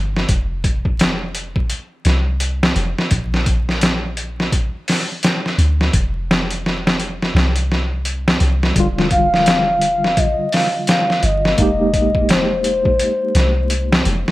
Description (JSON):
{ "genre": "trip hop", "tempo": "85 BPM", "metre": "4/4", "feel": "swing 60% on 16ths", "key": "F dorian", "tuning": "A4 = 440 Hz", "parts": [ { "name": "soft 808-style bass", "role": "bass", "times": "0.0-14.2 s", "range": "Eb1 to D2", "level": "-20 LUFS", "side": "equal", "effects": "none" }, { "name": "trip hop sampler-style drum kit", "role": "drums", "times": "0.2-14.3 s", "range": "hi-hat, kick drum, snare drum", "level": "-17 LUFS", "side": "equal", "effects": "none" }, { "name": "tine electric piano", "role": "accompaniment", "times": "8.7-14.3 s", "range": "D3 to G4", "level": "-21 LUFS", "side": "equal", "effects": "overdrive, medium stereo tremolo" }, { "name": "pure breathy sine lead", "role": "melody", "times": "9.1-14.1 s", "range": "C5 to F5", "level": "-18 LUFS", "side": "left 1 dB", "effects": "chorus, tape echo" } ], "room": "light reverb, digital ambience", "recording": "vinyl crackle", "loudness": "-15 LUFS", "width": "side -17 dB against mid", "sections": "0.0-14.3 A section", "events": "none", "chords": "0.3 F5; 3.1 N.C.; 5.9 F5; 8.8 Ebmaj9; 11.6 Fm11" }